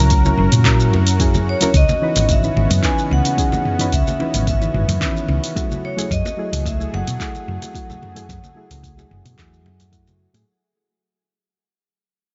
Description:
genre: sunset chillout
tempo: 110 BPM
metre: 4/4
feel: straight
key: unclear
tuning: A4 = 440 Hz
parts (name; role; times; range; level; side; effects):
- vibraphone with medium hard mallets; melody; 0.0-9.9 s; C#5 to A#5; -27 LUFS; equal; digital delay
- soft electric-piano-like synth keys; accompaniment; 0.0-10.4 s; D#3 to B4; -26 LUFS; equal; chorus, digital delay
- lush unison pad; sustained chords; 0.0-10.4 s; C#3 to A#4; -30 LUFS; equal; chorus, vintage 12-bit sampler grit
- hollow-body short-scale fingered electric bass; bass; 0.0-10.4 s; F#1 to B2; -20 LUFS; equal; tube saturation
- deep house drum kit; drums; 0.1-10.5 s; handclaps, hi-hat, shaker, toms; -26 LUFS; equal; none
- electronic kick drum; drums; 0.1-10.0 s; none; -23 LUFS; equal; none
- congas; percussion; 0.1-10.4 s; none; -30 LUFS; equal; none
room: digital ambience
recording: nothing above 7.7 kHz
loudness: -18 LUFS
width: mono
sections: 0.0-10.5 A section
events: fade-out 1.7-10.5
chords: 0.0 F#7; 1.7 C#m9; 5.8 F#m9

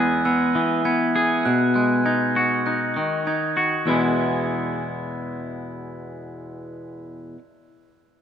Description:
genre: post-rock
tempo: 99 BPM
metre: 4/4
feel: straight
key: E major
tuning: A4 = 440 Hz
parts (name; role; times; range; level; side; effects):
- glockenspiel with rubber mallets; arpeggios; 0.0-4.2 s; E6 to G#6; -27 LUFS; right 7 dB; digital delay
- twangy electric guitar; arpeggios; 0.0-7.4 s; E2 to G#4; -21 LUFS; left 1 dB; digital delay
room: wet plate reverb, RT60 3.3 s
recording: none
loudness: -19 LUFS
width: side -8 dB against mid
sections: 0.0-3.9 A section; 3.9-6.3 B section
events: none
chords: 0.0 E; 1.5 B6; 3.9 E

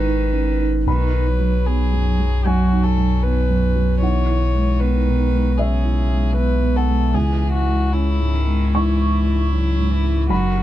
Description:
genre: neoclassical piano and strings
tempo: 76 BPM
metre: 4/4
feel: rubato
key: C# minor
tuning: A4 = 440 Hz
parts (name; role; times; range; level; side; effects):
- warm violin; melody; 0.0-10.6 s; E4 to C#5; -26 LUFS; left 4 dB; none
- rich cello; second line; 0.0-10.6 s; B2 to F#3; -28 LUFS; right 3 dB; none
- felt-muted upright piano; accompaniment; 0.0-10.6 s; B1 to C#6; -21 LUFS; right 3 dB; none
- punchy sub bass; bass; 0.0-10.6 s; F#1 to C#2; -19 LUFS; left 1 dB; none
room: little or no reverb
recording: dark, warm production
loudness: -16 LUFS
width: side -13 dB against mid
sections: 0.9-10.6 A section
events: none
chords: 0.0 G#m; 0.9 B; 4.0 E/B; 7.1 C#m

